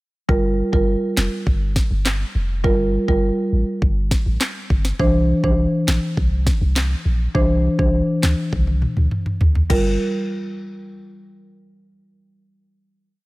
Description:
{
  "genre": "dancehall",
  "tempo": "102 BPM",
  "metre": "4/4",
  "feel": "straight",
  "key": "G dorian",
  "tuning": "A4 = 440 Hz",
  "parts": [
    { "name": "marimba with medium mallets", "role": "accompaniment", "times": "0.3-9.9 s", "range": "E3 to C5", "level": "-21 LUFS", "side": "equal", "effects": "sidechain pumping" },
    { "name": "punchy sub bass", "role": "bass", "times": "0.3-10.0 s", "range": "F1 to D2", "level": "-20 LUFS", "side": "equal", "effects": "none" },
    { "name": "afro-pop drum kit", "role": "drums", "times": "0.3-9.8 s", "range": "crash cymbal, handclaps, kick drum, snare drum, toms", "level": "-21 LUFS", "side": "equal", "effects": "none" }
  ],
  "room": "little or no reverb",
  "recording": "none",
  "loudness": "-17 LUFS",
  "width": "side -20 dB against mid",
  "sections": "0.3-9.7 verse; 9.7-12.1 final chord",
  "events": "drum fill 8.5-9.7",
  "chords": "0.3 Gm7; 5.0 Cadd9; 9.7 Gm7"
}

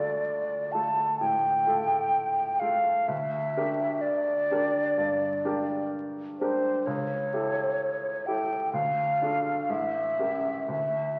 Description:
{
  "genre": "classical, romantic duo for flute and grand piano",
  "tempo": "63 BPM",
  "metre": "4/4",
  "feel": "rubato",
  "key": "D minor",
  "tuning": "A4 = 440 Hz",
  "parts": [
    { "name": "mellow hollow silver concert flute", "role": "melody", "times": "0.0-11.2 s", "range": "C5 to A5", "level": "-29 LUFS", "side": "equal", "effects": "none" },
    { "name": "clear baby grand piano", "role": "accompaniment", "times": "0.0-11.2 s", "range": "A1 to Bb4", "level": "-34 LUFS", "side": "equal", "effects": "none" }
  ],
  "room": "wet recital hall reverb, RT60 1.5 s",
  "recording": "very old 78 rpm record, vinyl crackle",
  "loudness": "-28 LUFS",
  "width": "mono",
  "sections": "0.0-11.2 A section",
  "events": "none",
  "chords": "0.0 Dm; 3.1 Gm/D; 6.9 A7/C#; 8.7 Dm; 9.7 A7b9"
}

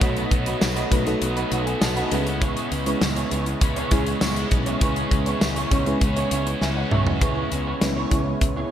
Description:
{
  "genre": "1980s-style pop",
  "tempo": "100 BPM",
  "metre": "4/4",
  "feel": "straight",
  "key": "C# minor",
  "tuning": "A4 = 440 Hz",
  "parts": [
    { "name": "FM electric piano with soft pad layer", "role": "accompaniment", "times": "0.0-8.7 s", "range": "G#3 to A5", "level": "-27 LUFS", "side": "equal", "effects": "chorus" },
    { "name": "overdriven electric guitar", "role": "accompaniment", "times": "0.0-7.7 s", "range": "B2 to C#4", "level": "-31 LUFS", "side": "right 1 dB", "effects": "lush chorus" },
    { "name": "warm analog pad", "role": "sustained chords", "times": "0.0-8.7 s", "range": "C#3 to D#5", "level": "-30 LUFS", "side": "equal", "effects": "chorus" },
    { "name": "electric guitar at the edge of break-up", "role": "riff", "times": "0.0-8.7 s", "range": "A3 to C#5", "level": "-30 LUFS", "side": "right 3 dB", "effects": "ensemble chorus, digital delay" },
    { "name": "mellow fretless electric bass", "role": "bass", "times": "0.0-8.6 s", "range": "B1 to C#2", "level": "-28 LUFS", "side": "equal", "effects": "none" },
    { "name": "modern studio drum kit", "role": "drums", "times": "0.0-8.6 s", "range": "hi-hat, kick drum, snare drum, tambourine, toms", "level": "-24 LUFS", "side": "equal", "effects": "gated reverb" }
  ],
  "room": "moderate lush hall reverb, RT60 1.9 s, studio reverb",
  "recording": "bright 1980s-style digital production",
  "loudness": "-20 LUFS",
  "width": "side -10 dB against mid",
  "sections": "0.0-7.2 A section; 7.2-8.7 B section",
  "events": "drum fill 6.6-7.2",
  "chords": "0.0 B7; 2.1 C#m7"
}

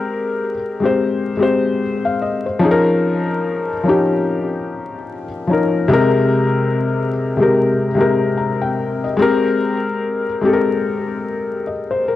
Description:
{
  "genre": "hip hop",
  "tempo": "73 BPM",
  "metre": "4/4",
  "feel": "swing 60% on 16ths",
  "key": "Ab major",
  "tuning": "A4 = 439 Hz",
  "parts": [
    { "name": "felt-muted upright piano", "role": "solo", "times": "0.0-12.2 s", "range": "C3 to Bb5", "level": "-15 LUFS", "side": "left 2 dB", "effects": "cassette tape, low-pass filter, tape echo" }
  ],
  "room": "light reverb, studio reverb",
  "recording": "home recording on cassette, vinyl crackle",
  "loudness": "-15 LUFS",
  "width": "side -13 dB against mid",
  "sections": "0.0-12.2 A section",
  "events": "none",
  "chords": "0.0 Abmaj9; 2.6 Db69; 5.9 Abmaj9/C; 9.2 Abmaj9"
}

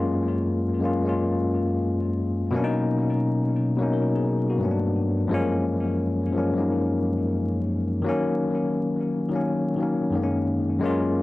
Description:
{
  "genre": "hip hop",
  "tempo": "87 BPM",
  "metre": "4/4",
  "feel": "swing 66% on 16ths",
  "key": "F# major",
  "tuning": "A4 = 441 Hz",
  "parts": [
    { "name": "bell-like tine electric piano", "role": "solo", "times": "0.0-11.2 s", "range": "F#2 to A#4", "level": "-22 LUFS", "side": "left 1 dB", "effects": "medium stereo tremolo, cassette tape, tape echo" }
  ],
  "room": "moderate small room ambience, RT60 0.5 s",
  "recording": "home recording on cassette, vinyl crackle",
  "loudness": "-22 LUFS",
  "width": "side -18 dB against mid",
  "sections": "0.0-10.8 A section",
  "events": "none",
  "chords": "0.0 F#maj9; 2.5 Bmaj7; 4.6 Gmaj9; 5.3 F#maj9; 8.1 D#m7; 10.1 F#6"
}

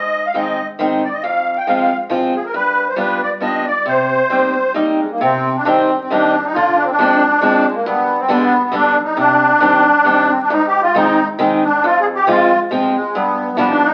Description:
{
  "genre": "musette",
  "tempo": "137 BPM",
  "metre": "3/4",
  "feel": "rubato",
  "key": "C minor",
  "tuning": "A4 = 440 Hz",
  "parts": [
    { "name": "musette accordion", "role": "melody", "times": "0.0-13.9 s", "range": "Ab3 to G5", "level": "-17 LUFS", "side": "equal", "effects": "none" },
    { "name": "picked acoustic archtop guitar", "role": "accompaniment", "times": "0.0-13.8 s", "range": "F2 to F4", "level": "-20 LUFS", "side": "equal", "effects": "none" }
  ],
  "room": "wet club reverb, RT60 0.8 s",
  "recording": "very old 78 rpm record, vinyl crackle",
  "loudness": "-15 LUFS",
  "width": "mono",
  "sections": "0.0-5.2 A section; 5.2-13.9 A section",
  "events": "none",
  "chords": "0.0 Ab; 1.2 Fm; 2.5 G7; 3.9 Cm7; 5.2 Cm; 6.6 Dm7b5; 7.9 G; 9.2 Cmadd9; 10.5 Ab; 11.8 Fm; 13.1 G7"
}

